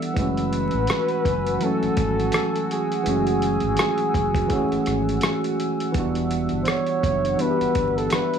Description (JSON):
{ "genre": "lo-fi hip hop", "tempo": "83 BPM", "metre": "4/4", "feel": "swing 57% on 16ths", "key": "unclear", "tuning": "A4 = 440 Hz", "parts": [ { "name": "tine electric piano", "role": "accompaniment", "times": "0.0-8.4 s", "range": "E3 to A4", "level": "-25 LUFS", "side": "left 1 dB", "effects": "medium stereo tremolo, low-pass filter" }, { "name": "hollow soft pad", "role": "sustained chords", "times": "0.0-8.4 s", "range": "D4 to E6", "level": "-29 LUFS", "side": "right 4 dB", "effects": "chorus, low-pass filter" }, { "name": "dusty soul sampler-style drum kit", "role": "drums", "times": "0.0-8.4 s", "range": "hi-hat, kick drum, rim click", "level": "-26 LUFS", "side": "right 1 dB", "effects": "overdrive" }, { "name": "breathy flugelhorn", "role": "melody", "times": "0.2-8.4 s", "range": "G#4 to C#5", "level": "-25 LUFS", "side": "equal", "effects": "low-pass filter, tape echo" }, { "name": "sub bass with octave", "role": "bass", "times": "0.2-8.1 s", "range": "E1 to A1", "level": "-28 LUFS", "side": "right 2 dB", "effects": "none" } ], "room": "little or no reverb", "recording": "dry, gritty hardware recording, vinyl crackle, studio reverb", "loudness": "-20 LUFS", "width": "side -7 dB against mid", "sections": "0.0-8.4 A section", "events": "none", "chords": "0.2 F#m9; 5.9 Em9", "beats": "| 0.16 0.89 1.61 2.33 | 3.05 3.78 4.50 5.22 | 5.95 6.67 7.39 8.11" }